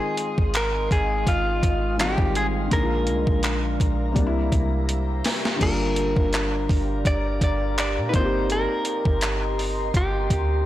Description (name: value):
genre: contemporary R&B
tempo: 83 BPM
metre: 4/4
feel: swing 54% on 16ths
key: unclear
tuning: A4 = 440 Hz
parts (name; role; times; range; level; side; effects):
- direct-recorded clean electric guitar; melody; 0.0-10.7 s; F4 to D5; -27 LUFS; equal; spring reverb
- felt-muted upright piano; accompaniment; 0.0-10.7 s; C3 to G4; -28 LUFS; left 2 dB; none
- glassy FM pad; sustained chords; 0.0-10.7 s; Ab3 to C6; -32 LUFS; equal; ensemble chorus, built-in reverb
- gated 80s digital drum machine; drums; 0.2-10.5 s; crash cymbal, handclaps, hi-hat, kick drum, snare drum; -23 LUFS; equal; gated reverb, gated reverb snare, soft clipping on snare
- soft 808-style bass; bass; 0.4-10.7 s; G1 to Bb2; -26 LUFS; equal; none
room: light reverb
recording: blown-out, overdriven recording, overdrive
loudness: -20 LUFS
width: side -14 dB against mid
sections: 0.0-5.6 A section; 5.6-10.7 B section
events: drum fill 4.9-5.6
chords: 0.0 Fm7/Ab; 2.7 Bb7; 4.2 C7; 5.6 Gm7; 8.1 Eb6/G